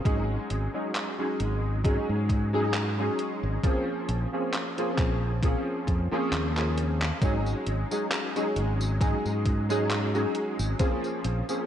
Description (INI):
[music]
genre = vaporwave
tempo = 67 BPM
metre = 4/4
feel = swing 55% on 16ths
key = unclear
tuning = A4 = 439 Hz
[part]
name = warm electric grand piano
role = accompaniment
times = 0.0-11.7 s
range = F3 to Ab4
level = -28 LUFS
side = equal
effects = ensemble chorus, vintage 12-bit sampler grit, analog delay
[part]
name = fingered electric bass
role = bass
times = 0.1-11.4 s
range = Ab1 to Ab2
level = -28 LUFS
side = equal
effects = none
[part]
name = detuned 8-bit digital drum machine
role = drums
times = 0.1-11.7 s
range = handclaps, hi-hat, tambourine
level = -34 LUFS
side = equal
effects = overdrive, small room reverb, gated reverb
[part]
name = electronic kick drum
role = drums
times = 0.1-11.0 s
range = none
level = -26 LUFS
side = equal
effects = overdrive, small room reverb
[sound]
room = light reverb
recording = cassette tape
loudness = -25 LUFS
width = side -10 dB against mid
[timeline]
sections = 0.0-7.2 A section; 7.2-11.7 B section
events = drum fill 6.5-7.2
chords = 0.1 Ab7sus4; 3.6 Bbm9; 7.2 Ab7sus4; 10.8 Bbm9